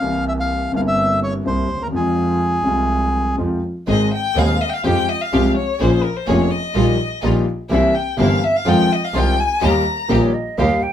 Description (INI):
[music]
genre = tango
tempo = 125 BPM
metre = 4/4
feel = rubato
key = F minor, Ab major from 3.9 s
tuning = A4 = 441 Hz
[part]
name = bandoneon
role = melody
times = 0.0-3.4 s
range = Ab4 to F5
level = -21 LUFS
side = equal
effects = none
[part]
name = warm concert grand piano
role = accompaniment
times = 0.0-10.8 s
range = Eb1 to Ab4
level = -20 LUFS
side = left 2 dB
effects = none
[part]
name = clear double bass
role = bass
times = 0.0-10.8 s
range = F1 to F2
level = -21 LUFS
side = right 2 dB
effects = none
[part]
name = clear violin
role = second line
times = 3.9-10.1 s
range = Bb4 to Bb5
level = -20 LUFS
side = left 3 dB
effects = none
[part]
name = bright studio string section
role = stabs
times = 3.9-10.8 s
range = G3 to Ab4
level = -25 LUFS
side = right 3 dB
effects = none
[part]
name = hollow concert flute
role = second line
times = 10.1-10.9 s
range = C5 to G5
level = -22 LUFS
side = right 3 dB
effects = none
[sound]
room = moderate small room reverb, RT60 0.6 s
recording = minimal, uncompressed stereo recording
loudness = -16 LUFS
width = side -10 dB against mid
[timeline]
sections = 0.0-3.9 A section; 3.9-10.9 B section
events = violin solo 3.9-10.9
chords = 0.0 C7; 1.9 Fm; 3.9 Ab; 4.8 Fmadd9; 5.8 Bbm7; 6.8 Ebadd9/Bb; 7.7 C7; 8.7 Fm7; 9.6 Eb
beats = | 0.02 0.50 0.97 1.45 | 1.93 2.40 2.89 3.38 | 3.88 4.36 4.84 5.33 | 5.80 6.28 6.75 7.23 | 7.71 8.19 8.67 9.15 | 9.63 10.11 10.59